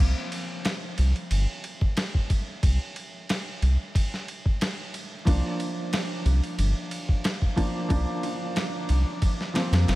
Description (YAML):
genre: trip hop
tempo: 91 BPM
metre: 4/4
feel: swing 53% on 16ths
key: unclear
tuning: A4 = 440 Hz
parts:
  - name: round analog bass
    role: bass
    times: 0.0-10.0 s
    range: G1 to F2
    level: -21 LUFS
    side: equal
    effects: none
  - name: dusty soul sampler-style drum kit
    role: drums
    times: 0.3-10.0 s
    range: kick drum, ride cymbal, snare drum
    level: -27 LUFS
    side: equal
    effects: small room ambience
  - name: felt-muted upright piano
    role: accompaniment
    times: 5.3-10.0 s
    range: F3 to D4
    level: -31 LUFS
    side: equal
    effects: tremolo, tape echo
room: light reverb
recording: vinyl crackle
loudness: -24 LUFS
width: side -18 dB against mid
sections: 0.0-10.0 A section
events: none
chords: 0.0 C5; 5.3 Gm7 (rootless)